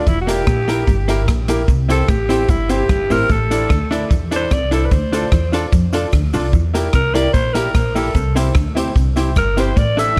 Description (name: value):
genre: ska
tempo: 148 BPM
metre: 4/4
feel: straight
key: unclear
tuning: A4 = 440 Hz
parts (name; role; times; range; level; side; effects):
- raspy alto saxophone; melody; 0.0-10.2 s; E4 to E5; -23 LUFS; equal; analog delay
- warm upright piano; stabs; 0.0-10.1 s; E4 to D5; -26 LUFS; equal; analog delay
- clean electric guitar; riff; 0.1-10.2 s; E2 to F3; -28 LUFS; equal; analog delay
- upright bass; bass; 0.1-10.2 s; E1 to F2; -22 LUFS; equal; none
- swinging big-band drum kit; drums; 0.1-10.2 s; hi-hat, kick drum, rim click; -22 LUFS; equal; none
- cabasa; percussion; 0.1-10.1 s; none; -43 LUFS; equal; none
- hollow-body jazz guitar; accompaniment; 0.3-10.1 s; Bb3 to A4; -26 LUFS; equal; analog delay
room: light reverb, small room ambience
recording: dark, warm production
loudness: -16 LUFS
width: mono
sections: 0.0-10.2 A section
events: alto saxophone solo 0.0-10.2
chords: 0.1 Edim; 1.7 C; 3.3 Asus4; 4.9 Dm; 6.5 Edim; 8.2 C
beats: | 0.07 0.48 0.88 1.28 | 1.69 2.09 2.50 2.90 | 3.30 3.71 4.11 4.51 | 4.92 5.32 5.73 6.13 | 6.53 6.94 7.34 7.75 | 8.15 8.55 8.96 9.36 | 9.77 10.17